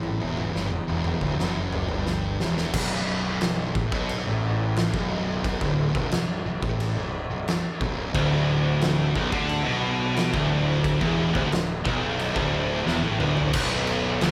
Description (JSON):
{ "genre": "stoner and doom metal", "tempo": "89 BPM", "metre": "4/4", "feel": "straight", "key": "B minor", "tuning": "A4 = 440 Hz", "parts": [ { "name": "thick fuzz guitar", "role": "riff", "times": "0.0-14.3 s", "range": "B1 to D3", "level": "-33 LUFS", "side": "equal", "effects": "none" }, { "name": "thick fuzz guitar", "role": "riff", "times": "0.0-14.3 s", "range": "B1 to D3", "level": "-32 LUFS", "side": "equal", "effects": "distortion" }, { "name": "fuzz fingered electric bass", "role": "bass", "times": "0.0-14.3 s", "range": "B0 to D2", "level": "-33 LUFS", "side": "equal", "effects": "overdrive" }, { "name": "oversized low-tuned drum kit", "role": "drums", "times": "0.0-14.3 s", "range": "crash cymbal, kick drum, snare drum, toms", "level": "-30 LUFS", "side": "equal", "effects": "none" }, { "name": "tight distorted guitar", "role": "riff", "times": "8.2-14.3 s", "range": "B1 to D3", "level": "-28 LUFS", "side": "equal", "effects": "distortion" } ], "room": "moderate large studio reverb, RT60 1.3 s", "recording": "band playing live in one room", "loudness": "-25 LUFS", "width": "mono", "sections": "0.0-2.7 A section; 2.7-13.5 B section", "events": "drum fill 0.0-2.7, 12.9-13.5", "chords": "0.0 Dadd9; 2.7 Bm; 8.1 D5; 13.5 Bm", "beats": "| 0.04 0.72 1.39 2.07 | 2.74 3.42 4.09 4.77 | 5.44 6.12 6.79 7.47 | 8.15 8.82 9.50 10.17 | 10.85 11.52 12.20 12.87 | 13.55 14.22" }